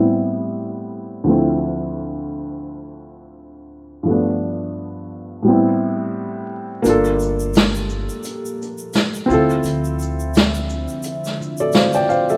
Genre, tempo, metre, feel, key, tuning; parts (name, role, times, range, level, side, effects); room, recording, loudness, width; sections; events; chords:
lo-fi hip hop; 86 BPM; 4/4; swing 59% on 16ths; D dorian; A4 = 440 Hz
felt-muted upright piano; accompaniment; 0.0-12.4 s; D2 to G5; -21 LUFS; equal; cassette tape, low-pass filter
dark analog pad; sustained chords; 6.8-12.4 s; D3 to E5; -31 LUFS; equal; chorus, phaser, low-pass filter
egg shaker; percussion; 6.8-12.4 s; -40 LUFS; equal
upright bass; bass; 6.9-10.9 s; G1 to D2; -26 LUFS; equal
vintage brush drum kit; drums; 6.9-12.3 s; hi-hat, shaker, snare drum; -20 LUFS; equal
light reverb, small room reverb; rough home demo mix, vinyl crackle, low-pass filter; -20 LUFS; mono
0.0-6.9 A section; 6.9-12.4 B section
filter sweep 0.0-6.9; kick muted 6.9-12.4
0.0 Am7; 1.3 Dm9; 4.1 G7; 5.5 Am7; 6.9 Gm9; 9.3 Dm9